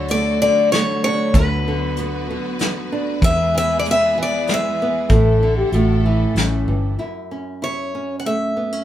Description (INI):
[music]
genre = acoustic folk-pop ballad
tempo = 96 BPM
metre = 3/4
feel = straight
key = unclear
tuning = A4 = 440 Hz
[part]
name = picked steel-string acoustic guitar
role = melody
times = 0.0-8.8 s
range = B4 to F#5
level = -20 LUFS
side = left 2 dB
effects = none
[part]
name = nylon-string guitar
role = accompaniment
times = 0.0-8.8 s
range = D2 to E4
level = -23 LUFS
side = right 2 dB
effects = none
[part]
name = rich symphonic string section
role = sustained chords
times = 0.0-7.0 s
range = C#3 to B4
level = -30 LUFS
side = equal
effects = none
[part]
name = vintage muted fingered electric bass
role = bass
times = 0.0-7.0 s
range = G1 to E2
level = -20 LUFS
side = equal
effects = none
[part]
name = soft brush drum kit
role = drums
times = 0.1-6.5 s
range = hi-hat, kick drum, snare drum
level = -18 LUFS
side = equal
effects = none
[part]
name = dark French horn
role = second line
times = 5.1-7.0 s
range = C#4 to A4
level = -21 LUFS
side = left 3 dB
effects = none
[sound]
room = wet studio ambience, RT60 0.5 s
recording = band playing live in one room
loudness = -16 LUFS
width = side -12 dB against mid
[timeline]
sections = 0.0-7.0 A section; 7.0-8.8 B section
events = none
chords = 0.0 D; 1.3 Bm/D; 3.2 E; 5.1 Asus4; 5.7 A; 7.0 F#m7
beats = 0.09 0.72 | 1.35 1.97 2.60 | 3.22 3.85 4.48 | 5.10 5.73 6.36 | 6.99 7.62 8.25